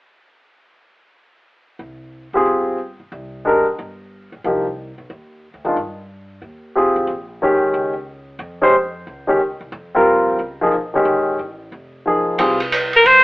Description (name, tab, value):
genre	modal jazz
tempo	181 BPM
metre	4/4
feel	swing 64% on 8ths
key	C phrygian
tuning	A4 = 438 Hz
part	upright bass	bass	1.8-13.2 s	F1 to G2	-37 LUFS	equal	none
part	warm baby grand piano	accompaniment	2.3-12.6 s	Eb3 to C5	-15 LUFS	equal	none
part	open jazz drum kit	drums	12.4-13.2 s	hi-hat, ride cymbal	-20 LUFS	right 1 dB	none
part	bright soprano saxophone	melody	13.0-13.2 s	Bb4 to C5	-6 LUFS	equal	none
room	moderate studio reverb, RT60 0.8 s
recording	band playing live in one room, telephone sound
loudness	-16 LUFS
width	side -19 dB against mid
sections	1.8-12.4 A section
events	none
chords	1.8 Cm7; 7.1 Bbm9; 12.4 C5